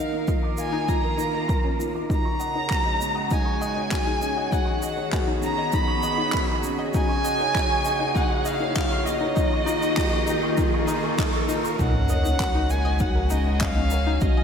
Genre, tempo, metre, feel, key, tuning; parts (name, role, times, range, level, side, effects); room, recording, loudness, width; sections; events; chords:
piano and strings electronica; 99 BPM; 4/4; straight; A4 = 440 Hz
dark violin; melody; 0.0-14.4 s; Eb5 to B5; -27 LUFS; right 1 dB; ping-pong delay
bright string quartet; sustained chords; 0.0-14.4 s; Db3 to Bb4; -31 LUFS; right 1 dB; sidechain pumping, low-pass filter
analog pluck; arpeggios; 0.0-14.4 s; Db4 to Eb5; -30 LUFS; left 3 dB; chorus, sidechain pumping, ping-pong delay
felt-muted upright piano; riff; 0.0-14.4 s; Db4 to D6; -30 LUFS; left 1 dB; lush chorus, ping-pong delay
electronic kick drum; drums; 0.3-14.3 s; -26 LUFS; equal; overdrive
shaker and handclaps; drums; 0.3-14.3 s; -34 LUFS; equal; high-pass filter on perc, high-pass filter on snare, high-pass filter on room
riser and sub drop; sound effects; 4.5-14.2 s; -34 LUFS; right 1 dB
warm sub bass; bass; 11.8-14.4 s; B1 to Db2; -24 LUFS; equal; tube saturation, sidechain pumping
wet lush hall reverb, RT60 2.0 s; dreamy mix soaked in reverb; -21 LUFS; side -7 dB against mid
0.0-11.8 A section; 11.8-14.4 B section
build-up 0.0-11.8; filter sweep on synth arpeggio sound 0.0-11.8; riser 4.5-11.8; drop 11.8-14.4; impact 11.8-14.2
0.0 Ebsus2; 2.1 Dbsus4; 4.5 B6; 6.9 Gbadd9; 9.4 Ebsus2; 11.8 Dbsus4